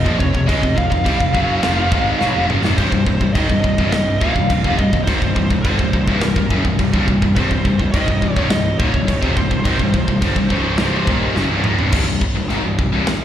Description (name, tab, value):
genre	heavy metal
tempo	105 BPM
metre	4/4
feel	straight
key	C phrygian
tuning	A4 = 441 Hz
part	high-gain lead guitar	melody	0.0-11.3 s	C5 to F5	-24 LUFS	equal	distortion, slapback echo
part	heavy high-gain guitar	riff	0.0-13.1 s	C2 to Ab3	-23 LUFS	left 9 dB	distortion
part	heavy high-gain guitar	riff	0.0-11.9 s	C2 to Ab3	-24 LUFS	right 7 dB	distortion, slapback echo
part	tight distorted guitar	riff	0.0-13.1 s	C2 to Ab3	-23 LUFS	right 1 dB	distortion, slapback echo
part	fuzz picked electric bass	bass	0.0-13.1 s	C1 to Db2	-21 LUFS	equal	overdrive
part	modern studio drum kit	drums	0.1-13.2 s	china cymbal, crash cymbal, kick drum, snare drum, toms	-20 LUFS	equal	none
room	studio ambience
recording	live gig heard through the venue's PA, recital hall reverb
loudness	-14 LUFS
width	side -10 dB against mid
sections	0.0-11.9 A section; 11.9-13.2 B section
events	drum fill 2.2-2.8, 11.4-11.9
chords	0.0 F5; 2.8 Cm